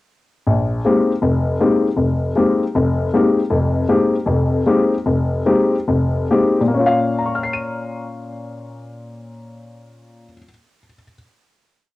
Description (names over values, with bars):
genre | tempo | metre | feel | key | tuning
jazz | 133-158 BPM | 4/4 | swing 66% on 8ths | Bb dorian | A4 = 439 Hz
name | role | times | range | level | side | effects
dark baby grand piano | solo | 0.5-11.1 s | F1 to Eb7 | -16 LUFS | left 2 dB | cassette tape
room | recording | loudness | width
moderate studio reverb, RT60 0.6 s | home recording on cassette | -15 LUFS | side -17 dB against mid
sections
0.5-6.7 A section; 6.7-10.3 final chord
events
slowing down 3.5-6.7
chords
0.5 Bb13sus4; 6.7 Bbm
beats
| 0.46 0.84 1.22 1.60 | 1.98 2.36 2.74 3.12 | 3.50 3.88 4.26 4.65 | 5.05 5.45 5.87 6.30 | 6.74 7.19 7.64 8.09 | 8.54 8.99 9.44 9.89